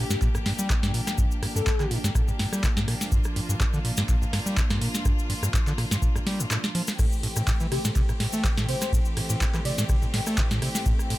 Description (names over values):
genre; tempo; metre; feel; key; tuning
acid house; 124 BPM; 4/4; swing 54% on 16ths; unclear; A4 = 439 Hz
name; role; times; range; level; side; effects
airy dreamy lead; melody; 0.0-1.9, 7.7-9.9 s; G4 to D5; -35 LUFS; left 2 dB; chorus, vintage 12-bit sampler grit, digital delay
clear studio string section; sustained chords; 0.0-11.2 s; E3 to G4; -34 LUFS; left 1 dB; sidechain pumping
overdriven acid bass; riff; 0.0-11.1 s; G2 to A3; -28 LUFS; equal; distortion, sidechain pumping, tape echo
booming analog drum machine; drums; 0.1-11.2 s; crash cymbal, handclaps, hi-hat, ride cymbal, rim click, snare drum; -30 LUFS; right 1 dB; none
cabasa; percussion; 0.1-11.1 s; none; -35 LUFS; left 3 dB; none
electronic kick drum; drums; 0.2-11.0 s; none; -25 LUFS; equal; none
room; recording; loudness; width
light reverb; none; -22 LUFS; side -17 dB against mid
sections
0.0-11.2 A section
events
kick drops out 6.5-7.0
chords
0.0 Gm7; 7.0 Am7